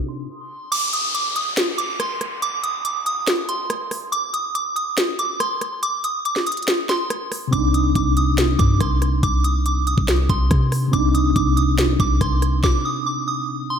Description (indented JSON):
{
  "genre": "hip hop, trap",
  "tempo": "141 BPM",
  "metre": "4/4",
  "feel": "half-time",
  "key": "C minor",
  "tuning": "A4 = 440 Hz",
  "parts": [
    { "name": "soft synth bell", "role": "melody", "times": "0.0-13.8 s", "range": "C6 to Eb6", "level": "-24 LUFS", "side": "right 2 dB", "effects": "chorus, ping-pong delay" },
    { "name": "mellow tine electric piano", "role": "accompaniment", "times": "0.0-0.3, 7.5-13.8 s", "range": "C3 to Eb4", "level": "-23 LUFS", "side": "left 1 dB", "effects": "medium stereo tremolo" },
    { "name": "trap drum kit", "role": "drums", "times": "0.7-12.7 s", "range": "crash cymbal, hi-hat, kick drum, rim click, snare drum", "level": "-22 LUFS", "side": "equal", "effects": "none" },
    { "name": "downlifter", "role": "sound effects", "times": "0.7-4.1 s", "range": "none", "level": "-28 LUFS", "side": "left 2 dB", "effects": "none" },
    { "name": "warm 808-style bass", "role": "bass", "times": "7.5-12.6 s", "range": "C2 to C3", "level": "-19 LUFS", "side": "equal", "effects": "none" }
  ],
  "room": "moderate lush hall reverb, RT60 1.8 s",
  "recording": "dreamy mix soaked in reverb, low-pass filter",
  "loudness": "-18 LUFS",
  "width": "side -8 dB against mid",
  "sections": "0.7-13.8 A section",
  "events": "stop 0.0-0.7, 12.6-13.8; kick muted 0.7-7.5",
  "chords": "0.0 Cmadd9; 0.7 N.C.; 7.5 Cmadd9"
}